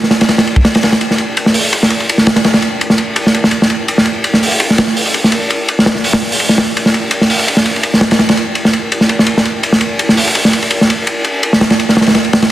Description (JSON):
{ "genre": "drum and bass", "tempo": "167 BPM", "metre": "4/4", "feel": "swing 54% on 16ths", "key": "none", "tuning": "none", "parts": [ { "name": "crunchy breakbeat drum kit", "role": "drums", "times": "0.0-12.5 s", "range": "hi-hat, kick drum, ride cymbal, snare drum", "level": "-10 LUFS", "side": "equal", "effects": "none" } ], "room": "light reverb", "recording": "dense, heavily limited modern master", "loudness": "-10 LUFS", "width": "side -14 dB against mid", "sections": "0.0-1.0 A section; 1.0-12.5 B section", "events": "drop 0.0-1.0", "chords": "none" }